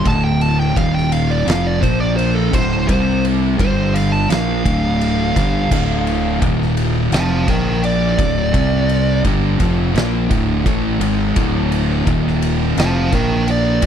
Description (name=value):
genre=stoner and doom metal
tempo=85 BPM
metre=4/4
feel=straight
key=D minor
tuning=A4 = 440 Hz
part: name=fuzz lead guitar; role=melody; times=0.0-13.9 s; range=A4 to A5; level=-21 LUFS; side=right 2 dB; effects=distortion, slapback echo
part: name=thick fuzz guitar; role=riff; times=0.0-13.9 s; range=D2 to C4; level=-20 LUFS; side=left 10 dB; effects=distortion
part: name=thick fuzz guitar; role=riff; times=0.0-13.9 s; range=D2 to C4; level=-20 LUFS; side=right 11 dB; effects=distortion
part: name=fingered electric bass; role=bass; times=0.0-13.9 s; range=D1 to C2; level=-21 LUFS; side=equal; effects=tube saturation
part: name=oversized low-tuned drum kit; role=drums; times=0.1-13.9 s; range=crash cymbal, kick drum, ride cymbal, snare drum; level=-22 LUFS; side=equal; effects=none
room=little or no reverb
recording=none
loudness=-14 LUFS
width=side -8 dB against mid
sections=0.0-13.9 A section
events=lead electric guitar solo 0.0-13.9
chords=0.0 D5; 0.8 Eb5; 1.5 Dm; 1.8 Bb5; 2.5 D5; 2.9 C5; 3.6 G5; 4.3 Dm; 6.4 Eb5; 7.1 F; 7.5 Bb5; 8.2 D5; 8.5 C5; 9.2 Dm; 12.1 Eb5; 12.8 F; 13.1 Bb5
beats=| 0.06 0.76 1.47 2.18 | 2.88 3.59 4.30 5.00 | 5.71 6.42 7.12 7.83 | 8.54 9.24 9.95 10.66 | 11.36 12.07 12.77 13.48